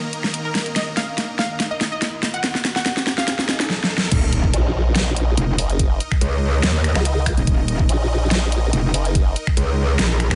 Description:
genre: heavy wobble dubstep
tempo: 143 BPM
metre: 4/4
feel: half-time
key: Eb minor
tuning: A4 = 440 Hz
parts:
  - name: unison pluck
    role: melody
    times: 0.0-3.4 s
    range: Bb4 to Gb5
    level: -30 LUFS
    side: equal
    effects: tape echo
  - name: supersaw chords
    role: sustained chords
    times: 0.0-10.4 s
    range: Eb3 to Bb5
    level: -33 LUFS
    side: equal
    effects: sidechain pumping
  - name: riser, swell and impact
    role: sound effects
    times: 0.4-5.8 s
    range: none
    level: -30 LUFS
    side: equal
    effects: none
  - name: dubstep drum kit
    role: drums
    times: 0.1-10.4 s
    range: crash cymbal, finger snaps, hi-hat, snare drum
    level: -24 LUFS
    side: equal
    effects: overdrive
  - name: metallic wobble bass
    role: bass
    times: 4.1-10.4 s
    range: Eb1 to Eb2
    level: -21 LUFS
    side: equal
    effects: distortion, chorus, overdrive
  - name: electronic kick drum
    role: drums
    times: 4.1-9.6 s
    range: none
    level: -21 LUFS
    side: equal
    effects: overdrive
  - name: formant-sweep wobble bass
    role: bass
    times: 4.5-9.3 s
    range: Gb1 to Db2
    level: -22 LUFS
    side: equal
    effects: chorus, overdrive
room: little or no reverb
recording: nothing above 10.9 kHz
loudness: -20 LUFS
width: mono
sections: 0.0-4.1 A section; 4.1-10.4 B section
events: build-up 0.0-4.1; drum fill 0.0-3.7, 3.7-4.1; riser 0.4-4.1; swell 3.3-4.1; drop 4.1-10.4; impact 4.1-5.8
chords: 0.0 Eb5

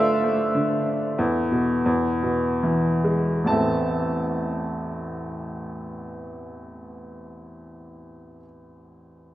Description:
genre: classical, lyrical solo piano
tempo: 70-98 BPM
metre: 3/4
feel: rubato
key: A minor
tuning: A4 = 439 Hz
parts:
  - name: clear upright piano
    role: solo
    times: 0.0-9.3 s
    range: A1 to A5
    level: -22 LUFS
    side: equal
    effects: none
room: wet recital hall reverb, RT60 1.6 s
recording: recorded in a church or concert hall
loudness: -21 LUFS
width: side -14 dB against mid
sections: 0.0-3.5 A section; 3.5-8.4 B section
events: slowing down 0.0-3.5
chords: 0.0 Dmadd9; 1.2 Esus4; 1.9 E; 3.5 Am

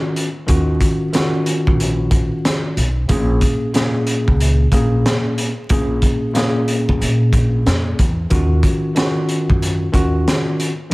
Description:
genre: hip hop, boom-bap hip-hop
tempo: 92 BPM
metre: 4/4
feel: swing 62% on 16ths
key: Eb minor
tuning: A4 = 441 Hz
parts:
  - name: tine electric piano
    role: accompaniment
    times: 0.0-10.9 s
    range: Bb2 to Ab4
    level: -19 LUFS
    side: equal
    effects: medium stereo tremolo, cassette tape, high-pass filter, low-pass filter
  - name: crunchy breakbeat drum kit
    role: drums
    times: 0.2-10.9 s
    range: hi-hat, kick drum, snare drum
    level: -18 LUFS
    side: equal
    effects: none
  - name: upright bass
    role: bass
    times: 0.5-10.2 s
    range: Bb1 to Bb2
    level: -18 LUFS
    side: equal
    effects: none
room: light reverb, small room reverb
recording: vinyl crackle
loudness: -14 LUFS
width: side -22 dB against mid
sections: 0.0-10.9 A section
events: none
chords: 0.0 Ebm9; 3.1 Bbm7; 8.3 Ebm9

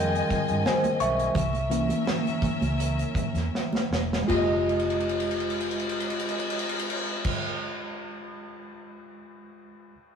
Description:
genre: lush 1970s-style soul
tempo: 77-89 BPM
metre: 4/4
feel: swing 54% on 16ths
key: F minor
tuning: A4 = 440 Hz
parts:
  - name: rich studio string section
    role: second line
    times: 0.0-7.4 s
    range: C4 to Ab5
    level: -34 LUFS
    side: left 3 dB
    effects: none
  - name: mellow tine electric piano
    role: accompaniment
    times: 0.0-10.0 s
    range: Eb3 to Db6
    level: -28 LUFS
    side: equal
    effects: medium stereo tremolo
  - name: vintage muted fingered electric bass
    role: bass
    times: 0.0-7.4 s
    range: E1 to G2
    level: -31 LUFS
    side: equal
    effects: none
  - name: modern studio drum kit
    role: drums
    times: 0.2-8.9 s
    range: crash cymbal, hi-hat, kick drum, ride cymbal, snare drum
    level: -30 LUFS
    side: equal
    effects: none
  - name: congas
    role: percussion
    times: 0.2-7.4 s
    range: none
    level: -33 LUFS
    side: right 2 dB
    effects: none
room: moderate stone room reverb, RT60 0.9 s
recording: rough rehearsal-room recording, warm saturation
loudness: -24 LUFS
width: side -7 dB against mid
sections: 0.0-4.3 A section; 4.3-7.4 B section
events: slowing down 0.0-4.3; tine electric piano solo 0.0-4.3; drum fill 3.5-4.3, 4.7-7.2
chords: 0.0 Dbmaj9#11; 1.3 C7b9; 4.3 Fm9

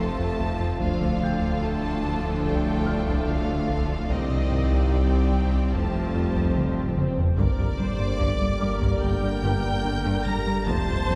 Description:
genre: cinematic, hybrid orchestral and electronic film score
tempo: 73 BPM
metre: 4/4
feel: straight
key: G minor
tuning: A4 = 440 Hz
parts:
  - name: warm symphonic violin section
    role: melody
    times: 0.0-11.2 s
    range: Eb5 to Bb6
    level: -39 LUFS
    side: equal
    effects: none
  - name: warm symphonic violin section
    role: second line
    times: 0.0-11.2 s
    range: F4 to Bb5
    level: -36 LUFS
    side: equal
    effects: none
  - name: warm studio viola section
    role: accompaniment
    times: 0.0-11.2 s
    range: A3 to D5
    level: -36 LUFS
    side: equal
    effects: none
  - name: hollow soft pad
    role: sustained chords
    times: 0.0-11.2 s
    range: F3 to F5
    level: -36 LUFS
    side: equal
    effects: none
  - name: mellow French horn section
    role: sustained chords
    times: 0.0-11.2 s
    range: Eb3 to G4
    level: -38 LUFS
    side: equal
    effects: none
  - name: mellow trombone section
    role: sustained chords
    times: 0.0-11.2 s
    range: A2 to A3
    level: -39 LUFS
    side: equal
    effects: none
  - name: rubbery square bass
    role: riff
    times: 0.0-11.2 s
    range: C2 to G3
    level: -32 LUFS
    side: equal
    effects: none
  - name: clear symphonic double bass section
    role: bass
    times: 0.0-11.2 s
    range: F1 to D2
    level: -34 LUFS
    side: equal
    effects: none
  - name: mellow tuba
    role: bass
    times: 0.0-11.2 s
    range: F1 to D2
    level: -36 LUFS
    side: equal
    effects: none
  - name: pure sine sub bass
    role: bass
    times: 0.0-11.2 s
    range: D1 to C2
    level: -34 LUFS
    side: equal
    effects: none
  - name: rich symphonic cello section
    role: bass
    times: 0.0-11.2 s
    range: C2 to G2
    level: -36 LUFS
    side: equal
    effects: none
  - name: dark concert grand piano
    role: texture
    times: 0.0-11.2 s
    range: G5 to G6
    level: -45 LUFS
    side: equal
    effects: none
  - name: harp-like synth pluck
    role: arpeggios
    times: 0.2-11.2 s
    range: C3 to G4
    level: -38 LUFS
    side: equal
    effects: none
  - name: taiko ensemble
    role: drums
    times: 0.4-11.2 s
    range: none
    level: -32 LUFS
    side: equal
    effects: none
  - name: swell and impact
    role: sound effects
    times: 6.7-10.7 s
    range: none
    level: -40 LUFS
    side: equal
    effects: none
room: wet concert hall reverb, RT60 2.4 s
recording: heard from further back in the room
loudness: -24 LUFS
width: mono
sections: 0.0-7.4 A section; 7.4-11.2 B section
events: swell 6.7-7.4; drum fill 6.6-7.4; impact 7.4-10.7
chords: 0.0 F; 0.8 Dm; 4.1 Cmadd9; 5.7 Fadd9; 7.4 Gm

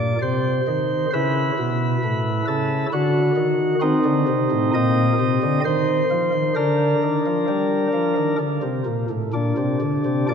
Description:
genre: classical, chorale-style piece for pipe organ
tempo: 66 BPM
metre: 3/4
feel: rubato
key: unclear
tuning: A4 = 435 Hz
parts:
  - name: chamber organ, sparkling flutes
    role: solo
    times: 0.0-10.3 s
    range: A2 to Eb5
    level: -18 LUFS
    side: equal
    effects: none
room: wet church reverb, RT60 2.9 s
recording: none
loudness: -18 LUFS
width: side -7 dB against mid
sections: 0.0-10.3 A section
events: none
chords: 0.2 Cm; 1.1 A; 2.9 D; 3.8 Cm; 5.6 Cmadd11/Eb; 6.6 Gm/D; 8.4 Amadd11

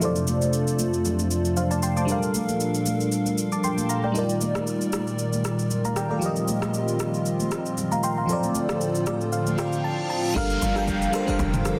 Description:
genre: amapiano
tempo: 116 BPM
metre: 4/4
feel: swing 55% on 16ths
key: G minor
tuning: A4 = 440 Hz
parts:
  - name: FM electric piano with soft pad layer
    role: accompaniment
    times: 0.0-11.8 s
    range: F3 to D6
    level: -28 LUFS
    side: equal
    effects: chorus, phaser, low-pass filter
  - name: hollow soft pad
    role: sustained chords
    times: 0.0-11.8 s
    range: F2 to D5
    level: -29 LUFS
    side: equal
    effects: chorus, sidechain pumping, low-pass filter
  - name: deep house drum kit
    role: drums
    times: 0.0-11.8 s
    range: crash cymbal, kick drum, rim click, shaker, toms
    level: -34 LUFS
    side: equal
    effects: overdrive
  - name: congas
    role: percussion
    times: 0.0-9.6 s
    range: none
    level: -34 LUFS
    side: equal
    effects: none
  - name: reverse cymbal and downlifter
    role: sound effects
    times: 9.5-11.8 s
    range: none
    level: -37 LUFS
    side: equal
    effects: none
  - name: deep log drum bass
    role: bass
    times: 10.4-11.7 s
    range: F1 to G1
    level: -31 LUFS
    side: equal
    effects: none
room: light reverb, digital ambience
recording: dense, heavily limited modern master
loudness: -25 LUFS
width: mono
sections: 0.0-10.4 A section; 10.4-11.8 B section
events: FM electric piano fill 8.8-10.4; reverse cymbal 9.5-10.4; drop 10.4-11.8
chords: 0.0 Dm7/F; 2.1 Gm7; 4.2 Ebmaj9; 6.2 F9sus4; 8.3 Dm7; 10.4 Gm7

